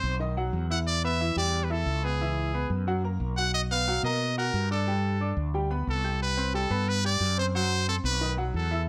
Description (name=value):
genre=latin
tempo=180 BPM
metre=4/4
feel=straight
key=unclear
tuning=A4 = 441 Hz
part: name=brilliant trumpet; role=melody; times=0.0-8.9 s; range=Ab4 to F#5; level=-31 LUFS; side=equal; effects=plate reverb
part: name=bright concert grand piano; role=accompaniment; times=0.0-8.9 s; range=D#3 to G6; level=-35 LUFS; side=equal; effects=none
part: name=mellow fretless electric bass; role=bass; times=0.0-8.9 s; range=B1 to B2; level=-31 LUFS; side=equal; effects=none
room=light reverb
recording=close, detailed microphones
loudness=-28 LUFS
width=mono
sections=0.0-8.9 A section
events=none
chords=0.2 B; 0.9 Em; 2.2 C#m7; 2.9 F#; 3.5 Bmaj7#11; 4.9 G; 6.2 C5; 7.5 Am69 (rootless); 8.2 B7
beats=0.20 0.54 | 0.87 1.21 1.54 1.87 | 2.21 2.54 2.87 3.21 | 3.54 3.87 4.21 4.54 | 4.87 5.21 5.54 5.87 | 6.21 6.54 6.88 7.21 | 7.54 7.88 8.21 8.54 | 8.88